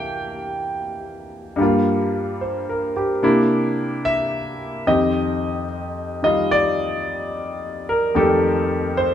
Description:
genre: solo jazz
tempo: 73 BPM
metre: 4/4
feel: swing 68% on 8ths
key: unclear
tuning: A4 = 440 Hz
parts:
  - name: clear concert grand piano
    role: solo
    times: 0.0-9.1 s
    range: F2 to G5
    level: -19 LUFS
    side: equal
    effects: none
room: moderate large studio reverb, RT60 1.0 s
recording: band playing live in one room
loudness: -18 LUFS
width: side -9 dB against mid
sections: 0.0-9.1 A section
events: none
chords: 0.0 C9; 1.6 Gm7; 3.2 C9; 4.9 F9

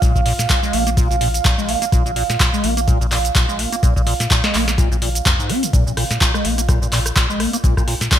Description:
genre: acid house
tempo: 126 BPM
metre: 4/4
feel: swing 56% on 16ths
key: unclear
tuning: A4 = 440 Hz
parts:
  - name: liquid acid bass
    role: riff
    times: 0.0-8.2 s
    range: Ab2 to Db4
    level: -22 LUFS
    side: left 1 dB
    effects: phaser, sidechain pumping, ping-pong delay
  - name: round analog bass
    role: bass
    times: 0.0-8.1 s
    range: Bb1 to Bb2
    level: -23 LUFS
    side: equal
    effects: sidechain pumping
  - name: booming analog drum machine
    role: drums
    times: 0.0-8.2 s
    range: handclaps, hi-hat, rim click, shaker, snare drum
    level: -20 LUFS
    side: equal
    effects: gated reverb
  - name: electronic kick drum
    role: drums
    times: 0.0-8.2 s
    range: none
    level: -18 LUFS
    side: equal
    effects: none
  - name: deep dark ambient pad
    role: texture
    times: 0.0-8.2 s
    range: F5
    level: -25 LUFS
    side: right 7 dB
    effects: chorus, built-in reverb, sidechain pumping
room: light reverb, digital ambience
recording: bright 1980s-style digital production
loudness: -15 LUFS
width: side -10 dB against mid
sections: 0.0-8.2 A section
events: none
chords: 0.0 Bb5

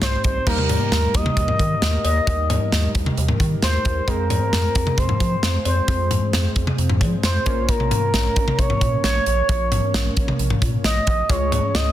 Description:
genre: synth-pop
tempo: 133 BPM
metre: 4/4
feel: straight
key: unclear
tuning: A4 = 442 Hz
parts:
  - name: expressive portamento lead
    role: melody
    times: 0.0-11.9 s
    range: Bb4 to Eb5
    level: -24 LUFS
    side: equal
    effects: chorus, tape echo
  - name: funky polysynth comp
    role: accompaniment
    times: 0.0-11.9 s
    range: G3 to Db5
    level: -29 LUFS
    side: equal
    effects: chorus
  - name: rubbery square bass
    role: bass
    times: 0.0-11.9 s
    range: Bb1 to F3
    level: -22 LUFS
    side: equal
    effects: none
  - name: modern studio drum kit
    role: drums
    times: 0.0-11.9 s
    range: cowbell, crash cymbal, hi-hat, kick drum, snare drum, toms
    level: -21 LUFS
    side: equal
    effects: none
room: light reverb, small room ambience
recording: dense, heavily limited modern master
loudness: -17 LUFS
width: side -12 dB against mid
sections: 0.5-11.9 A section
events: none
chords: 0.5 Eb; 4.1 Fm; 7.5 Bbm; 11.3 Db

